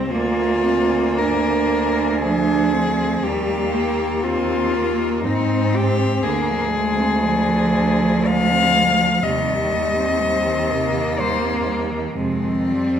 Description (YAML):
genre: classical, lyrical piece for cello ensemble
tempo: 52-63 BPM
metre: 3/4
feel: rubato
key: C minor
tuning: A4 = 445 Hz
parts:
  - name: rich cello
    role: second line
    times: 0.0-13.0 s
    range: C3 to D4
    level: -25 LUFS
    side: right 6 dB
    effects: none
  - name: clear cello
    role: accompaniment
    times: 0.0-13.0 s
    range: F3 to C4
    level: -24 LUFS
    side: equal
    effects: none
  - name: rich cello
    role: bass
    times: 0.0-13.0 s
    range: D2 to Ab2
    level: -23 LUFS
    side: right 2 dB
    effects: none
  - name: warm cello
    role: melody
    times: 0.1-13.0 s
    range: C4 to F5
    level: -21 LUFS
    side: left 4 dB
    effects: none
room: wet recital hall reverb, RT60 1.5 s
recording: recorded in a church or concert hall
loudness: -17 LUFS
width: side -8 dB against mid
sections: 0.0-13.0 A section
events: none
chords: 0.1 Bb/D; 3.2 Eb; 5.2 Ab; 6.2 Ddim; 9.2 Cm/Eb; 12.2 Fm7